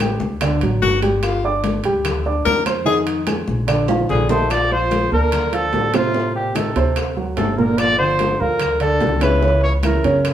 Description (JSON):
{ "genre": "Afro-Cuban jazz", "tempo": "146 BPM", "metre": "4/4", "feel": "straight", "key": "Bb major from 4.5 s", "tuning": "A4 = 440 Hz", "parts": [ { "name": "dark upright piano", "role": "accompaniment", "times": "0.0-10.3 s", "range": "Bb2 to D6", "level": "-20 LUFS", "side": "right 3 dB", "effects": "none" }, { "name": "upright bass", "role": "bass", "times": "0.0-10.3 s", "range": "G1 to Gb2", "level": "-22 LUFS", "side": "equal", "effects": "none" }, { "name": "bongos", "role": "percussion", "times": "0.0-10.3 s", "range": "none", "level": "-30 LUFS", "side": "left 5 dB", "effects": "none" }, { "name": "claves", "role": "percussion", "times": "0.0-10.3 s", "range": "none", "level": "-34 LUFS", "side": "left 2 dB", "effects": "none" }, { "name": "timbales", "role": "percussion", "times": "0.0-10.3 s", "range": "none", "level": "-29 LUFS", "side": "right 4 dB", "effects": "none" }, { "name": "congas", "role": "percussion", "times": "0.2-10.3 s", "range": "none", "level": "-28 LUFS", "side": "left 3 dB", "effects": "none" }, { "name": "breathy tenor saxophone", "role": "second line", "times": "0.8-10.2 s", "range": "A2 to Bb4", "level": "-24 LUFS", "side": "left 4 dB", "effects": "none" }, { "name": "mellow trumpet", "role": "melody", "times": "4.1-10.2 s", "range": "F4 to D5", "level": "-20 LUFS", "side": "equal", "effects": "none" } ], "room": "wet large studio reverb, RT60 1.0 s", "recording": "band playing live in one room", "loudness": "-16 LUFS", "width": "side -10 dB against mid", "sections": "0.0-4.5 A section; 4.5-10.3 B section", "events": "tenor saxophone solo 0.0-4.5; drum fill 3.9-4.5", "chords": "0.4 D; 1.2 G5; 2.9 Fm7; 3.7 Bb; 4.5 Bbmaj7; 6.1 Adim; 7.0 D7; 7.8 Gm9; 9.4 Dbm" }